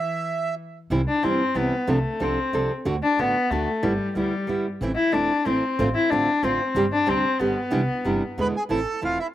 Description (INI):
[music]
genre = tango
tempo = 185 BPM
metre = 3/4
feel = rubato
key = C major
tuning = A4 = 441 Hz
[part]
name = bandoneon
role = melody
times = 0.0-0.5, 8.4-9.3 s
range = E4 to B5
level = -26 LUFS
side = right 4 dB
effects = slapback echo
[part]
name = warm cello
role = second line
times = 0.0-8.4 s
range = E3 to E4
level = -23 LUFS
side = left 2 dB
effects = slapback echo
[part]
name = nylon-string guitar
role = accompaniment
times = 0.9-9.2 s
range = B2 to A4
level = -25 LUFS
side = right 2 dB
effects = slapback echo
[part]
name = upright bass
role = bass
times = 0.9-9.2 s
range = E1 to E2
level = -30 LUFS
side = right 1 dB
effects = none
[sound]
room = little or no reverb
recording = recorded outdoors, with no room sound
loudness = -21 LUFS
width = side -13 dB against mid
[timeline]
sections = 0.9-8.7 A section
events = stop 0.0-0.9; cello solo 0.9-8.7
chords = 0.0 N.C.; 0.9 C; 1.9 F6/C; 2.9 D; 3.8 G6; 4.8 Am; 5.8 Dm7/A; 6.8 Gsus4; 7.4 G; 7.7 Cadd9; 8.4 E7; 8.7 Am